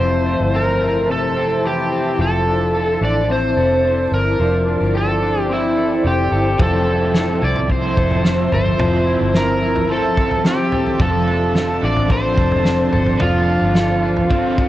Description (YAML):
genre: dream pop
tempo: 109 BPM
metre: 4/4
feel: straight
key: unclear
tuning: A4 = 440 Hz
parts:
  - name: overdriven slide guitar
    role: melody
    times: 0.0-14.7 s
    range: E4 to D5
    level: -19 LUFS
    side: right 1 dB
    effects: tape echo
  - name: granular cloud pad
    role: sustained chords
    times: 0.0-14.7 s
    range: F3 to A5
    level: -24 LUFS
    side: right 1 dB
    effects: built-in reverb
  - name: electric guitar at the edge of break-up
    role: arpeggios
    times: 0.0-14.7 s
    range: F2 to A4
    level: -22 LUFS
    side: left 3 dB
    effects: lush chorus, tape echo
  - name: vintage muted fingered electric bass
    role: bass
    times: 0.0-14.7 s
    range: F1 to C2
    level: -21 LUFS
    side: equal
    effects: none
  - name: crunchy overdriven guitar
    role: accompaniment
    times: 6.6-14.7 s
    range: F3 to A4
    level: -24 LUFS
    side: right 3 dB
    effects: tremolo, analog chorus
  - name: loose indie drum kit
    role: drums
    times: 6.6-14.7 s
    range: kick drum, snare drum, toms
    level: -20 LUFS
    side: equal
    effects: none
room: moderate plate reverb, RT60 2.0 s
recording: worn, warbling old tape, cassette tape, warbly pitch drift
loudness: -15 LUFS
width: side -14 dB against mid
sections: 0.0-14.7 A section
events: none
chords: 0.0 Fmaj7; 2.2 Dm7/F; 6.6 Fmaj7; 11.0 Dm7/F